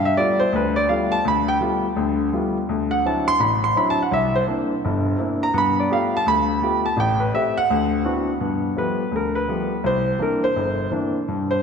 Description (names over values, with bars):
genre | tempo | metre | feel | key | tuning
solo jazz | 168 BPM | 4/4 | swing 63% on 8ths | G mixolydian | A4 = 435 Hz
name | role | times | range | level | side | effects
warm grand piano | solo | 0.0-11.6 s | G1 to C6 | -18 LUFS | equal | none
room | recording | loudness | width
wet church reverb, RT60 2.7 s | recorded in a church or concert hall | -18 LUFS | side -6 dB against mid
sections
0.0-8.4 A section; 8.4-11.6 A section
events
grand piano solo 0.0-8.4, 8.4-11.6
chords
0.0 G9; 2.7 D9; 4.1 C9; 5.5 G9; 7.0 Am7; 7.7 D13; 8.4 G9; 9.8 C9